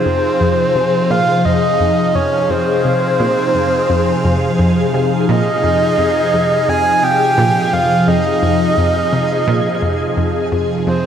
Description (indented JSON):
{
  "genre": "ambient, sequencer-driven space music",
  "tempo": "86 BPM",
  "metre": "4/4",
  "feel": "straight",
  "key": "F minor",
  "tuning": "A4 = 440 Hz",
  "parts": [
    { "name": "breathy flute-like synth lead", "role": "melody", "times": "0.0-11.1 s", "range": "C5 to Ab5", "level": "-16 LUFS", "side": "right 1 dB", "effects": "chorus, tape echo" },
    { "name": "phased analog pad", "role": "sustained chords", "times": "0.0-11.1 s", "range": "C3 to F5", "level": "-17 LUFS", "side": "left 1 dB", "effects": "phaser, chorus" },
    { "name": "twinkling granular texture", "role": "texture", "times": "0.0-11.1 s", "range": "Ab4", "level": "-29 LUFS", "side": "equal", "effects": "built-in reverb, ensemble chorus" },
    { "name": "analog pluck", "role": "riff", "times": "0.1-11.1 s", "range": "F2 to C3", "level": "-20 LUFS", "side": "equal", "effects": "chorus, tape echo" }
  ],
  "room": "wet plate reverb, RT60 3.3 s",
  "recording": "dreamy mix soaked in reverb",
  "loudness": "-12 LUFS",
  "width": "side -8 dB against mid",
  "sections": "0.0-11.1 A section",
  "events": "fade-in on synth texture 0.0-11.1; filter sweep on synth arpeggio sound 0.0-11.1",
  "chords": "0.0 Fm7",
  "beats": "0.41 1.10 1.80 | 2.50 3.20 3.90 4.59 | 5.29 5.99 6.69 7.38 | 8.08 8.78 9.48 10.17 | 10.87"
}